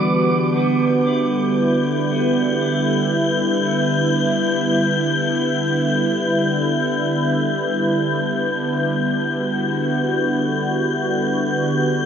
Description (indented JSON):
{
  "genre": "ambient",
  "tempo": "free time",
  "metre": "none",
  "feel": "none",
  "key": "E minor",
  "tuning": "A4 = 444 Hz",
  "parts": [
    { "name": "warm analog pad", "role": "sustained chords", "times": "0.0-12.1 s", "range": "D3 to B4", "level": "-18 LUFS", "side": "right 1 dB", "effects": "chorus" },
    { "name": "clean electric guitar", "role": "arpeggios", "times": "0.0-3.7 s", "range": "B3", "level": "-26 LUFS", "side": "right 1 dB", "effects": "diffuse ambient delay" },
    { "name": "wind-like tuned noise texture", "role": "texture", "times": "0.0-12.1 s", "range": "G6", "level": "-24 LUFS", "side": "left 4 dB", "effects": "built-in reverb" }
  ],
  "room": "wet huge ambient reverb, RT60 6.9 s",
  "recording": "none",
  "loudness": "-17 LUFS",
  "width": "side -8 dB against mid",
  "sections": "0.1-12.1 A section",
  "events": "none",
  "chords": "0.1 Em7"
}